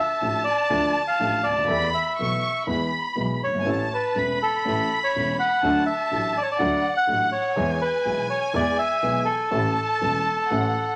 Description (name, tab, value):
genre	tango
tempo	122 BPM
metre	4/4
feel	rubato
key	A major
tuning	A4 = 439 Hz
part	bandoneon	melody	0.0-11.0 s	A4 to F#5	-26 LUFS	equal	none
part	warm studio violin section	second line	0.0-11.0 s	F#5 to C#6	-30 LUFS	equal	none
part	warm upright piano	accompaniment	0.2-10.7 s	E1 to A4	-30 LUFS	equal	none
part	warm double bass	bass	0.2-10.7 s	E1 to E2	-35 LUFS	equal	none
room	moderate studio reverb, RT60 0.8 s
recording	none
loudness	-23 LUFS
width	mono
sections	0.0-11.0 A section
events	none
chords	0.0 Dm; 1.7 Esus4; 2.7 E; 3.7 A; 5.6 D; 7.6 E; 9.5 A